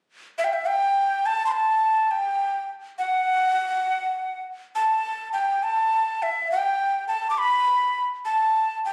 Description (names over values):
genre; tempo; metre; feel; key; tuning
andean folk; 69 BPM (dotted quarters); 6/8; straight; unclear; A4 = 443 Hz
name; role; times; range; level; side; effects
breathy bright large quena; solo; 0.4-8.9 s; E5 to D6; -24 LUFS; equal; none
room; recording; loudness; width
moderate recital hall reverb, RT60 1.4 s; recorded on a phone in the room, club reverb; -24 LUFS; mono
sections
0.0-1.2 A section; 1.2-8.9 B section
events
none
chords
none